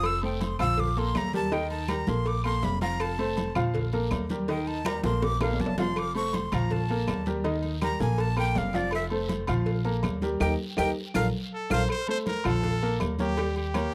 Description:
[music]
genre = latin, salsa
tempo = 162 BPM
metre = 4/4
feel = straight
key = unclear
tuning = A4 = 440 Hz
[part]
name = breathy bright jazz flute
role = melody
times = 0.0-11.8 s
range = D5 to E6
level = -34 LUFS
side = equal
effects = tape echo
[part]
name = bright baby grand piano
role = accompaniment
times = 0.0-13.9 s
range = Eb3 to G5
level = -33 LUFS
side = equal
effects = none
[part]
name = upright bass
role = bass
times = 0.0-13.9 s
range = F1 to Eb2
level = -32 LUFS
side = equal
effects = none
[part]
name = agogo bells and timbales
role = percussion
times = 0.0-13.9 s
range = none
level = -41 LUFS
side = equal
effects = none
[part]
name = claves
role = percussion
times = 0.0-13.9 s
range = none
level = -42 LUFS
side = equal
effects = none
[part]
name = congas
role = percussion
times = 0.0-13.9 s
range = none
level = -36 LUFS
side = equal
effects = none
[part]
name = cowbell and bongos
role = percussion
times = 0.0-13.9 s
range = none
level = -39 LUFS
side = equal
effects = none
[part]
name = guiro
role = percussion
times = 0.0-13.9 s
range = none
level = -49 LUFS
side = equal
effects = none
[part]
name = brilliant trumpet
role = melody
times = 11.5-13.9 s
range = G4 to C5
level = -34 LUFS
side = equal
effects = none
[sound]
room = little or no reverb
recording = dry, close 1970s-style studio recording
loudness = -28 LUFS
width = mono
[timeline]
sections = 0.0-11.9 A section; 11.9-13.9 B section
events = flute solo 0.0-11.9; drum fill 4.9-6.0, 10.4-11.9; band accent 10.4-11.9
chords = 0.0 F; 0.8 Bb5; 1.5 Eb; 2.3 Bb5; 3.0 F; 3.7 Bb5; 4.5 Eb; 5.2 Bb5; 6.0 F; 6.7 Bb5; 7.4 Eb; 8.2 Bb5; 8.9 F; 9.7 Bb5; 10.4 Eb; 11.2 Bb5; 11.9 F; 12.6 Bb5; 13.4 Eb7

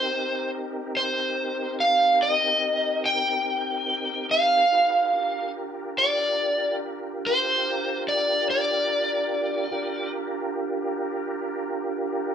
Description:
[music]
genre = blues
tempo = 48 BPM (dotted quarters)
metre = 12/8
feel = straight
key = G minor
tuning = A4 = 439 Hz
[part]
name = overdriven slide guitar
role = melody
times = 0.0-10.1 s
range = C5 to G5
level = -22 LUFS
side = equal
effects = none
[part]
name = tonewheel organ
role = sustained chords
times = 0.0-12.3 s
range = C4 to B4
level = -30 LUFS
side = right 1 dB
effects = slow rotary speaker, chorus vibrato
[sound]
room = moderate large studio reverb, RT60 1.0 s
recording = band playing live in one room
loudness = -22 LUFS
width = side -8 dB against mid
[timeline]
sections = 0.0-12.3 A section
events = none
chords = 0.0 Cm7; 4.7 Gm7

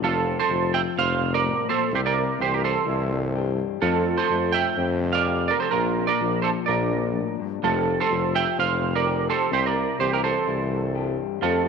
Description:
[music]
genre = highlife guitar band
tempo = 126 BPM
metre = 4/4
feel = straight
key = F major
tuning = A4 = 443 Hz
[part]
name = semi-hollow electric guitar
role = melody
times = 0.0-11.7 s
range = F4 to G5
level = -23 LUFS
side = right 7 dB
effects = analog chorus, slapback echo
[part]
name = electric guitar at the edge of break-up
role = accompaniment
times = 0.0-11.7 s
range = F2 to G4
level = -28 LUFS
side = left 13 dB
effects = none
[part]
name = warm tuba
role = bass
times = 0.0-11.7 s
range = F1 to F2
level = -27 LUFS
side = left 1 dB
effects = none
[sound]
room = moderate echo chamber reverb, RT60 2.3 s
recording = 1960s-style stereo with parts hard left and right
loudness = -21 LUFS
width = side -6 dB against mid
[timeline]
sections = 0.0-11.7 A section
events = none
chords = 0.0 F; 1.9 C; 3.8 Fadd9; 5.7 Bb; 7.6 Fadd9; 9.5 C

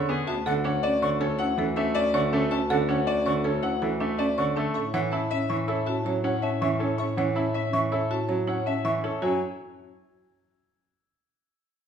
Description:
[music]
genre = classical, minimalist pattern music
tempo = 161 BPM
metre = 6/4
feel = straight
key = F# minor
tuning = A4 = 438 Hz
[part]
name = mellow French horn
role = second line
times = 0.0-9.0 s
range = C#4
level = -34 LUFS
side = right 4 dB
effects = none
[part]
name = bright baby grand piano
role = accompaniment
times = 0.0-9.4 s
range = D3 to E4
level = -29 LUFS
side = right 2 dB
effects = none
[part]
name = buzzing marimba with medium hard mallets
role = arpeggios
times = 0.0-9.4 s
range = C#4 to E5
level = -31 LUFS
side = right 5 dB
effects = none
[part]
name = mellow bass clarinet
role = bass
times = 0.0-9.4 s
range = D2 to A2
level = -30 LUFS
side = left 1 dB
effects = none
[part]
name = clear concert grand piano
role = melody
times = 0.1-9.4 s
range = G#4 to C#6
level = -30 LUFS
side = left 5 dB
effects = none
[part]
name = mellow hollow silver concert flute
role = arpeggios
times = 0.3-9.4 s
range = E5 to C#6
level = -34 LUFS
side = left 2 dB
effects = none
[sound]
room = wet large studio reverb, RT60 1.4 s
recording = heard from further back in the room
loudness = -23 LUFS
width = side -8 dB against mid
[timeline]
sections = 0.0-9.2 A section; 9.2-11.5 B section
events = none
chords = 0.3 Dmaj7; 4.8 A; 9.2 F#5

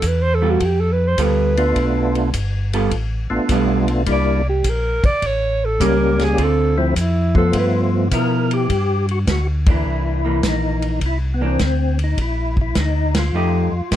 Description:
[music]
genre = soul jazz organ trio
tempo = 104 BPM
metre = 4/4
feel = swing 68% on 8ths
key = unclear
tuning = A4 = 440 Hz
[part]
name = breathy alto saxophone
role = melody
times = 0.0-7.8 s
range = C4 to D5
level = -20 LUFS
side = right 2 dB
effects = plate reverb
[part]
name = mellow tonewheel organ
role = bass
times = 0.0-14.0 s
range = G1 to B2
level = -20 LUFS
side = equal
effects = overdrive, chorus vibrato, slow rotary speaker
[part]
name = warm soul drum kit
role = drums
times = 0.0-14.0 s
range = hi-hat, kick drum, ride cymbal, snare drum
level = -22 LUFS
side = equal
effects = none
[part]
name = vintage hollow-body jazz guitar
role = accompaniment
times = 0.4-14.0 s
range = D3 to A4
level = -22 LUFS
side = right 3 dB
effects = none
[part]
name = percussive tonewheel organ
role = melody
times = 1.6-14.0 s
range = F3 to Bb4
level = -21 LUFS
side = left 1 dB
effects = slow rotary speaker, overdrive, chorus vibrato, plate reverb
[sound]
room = light reverb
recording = dark, warm production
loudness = -16 LUFS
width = side -12 dB against mid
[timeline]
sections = 0.0-8.7 A section; 8.7-14.0 B section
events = alto saxophone solo 0.0-8.7; band accent 9.6, 13.0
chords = 0.0 G9; 4.1 C9; 5.2 A7b9; 6.4 Dm7; 7.5 G13; 8.7 C9; 13.3 F9

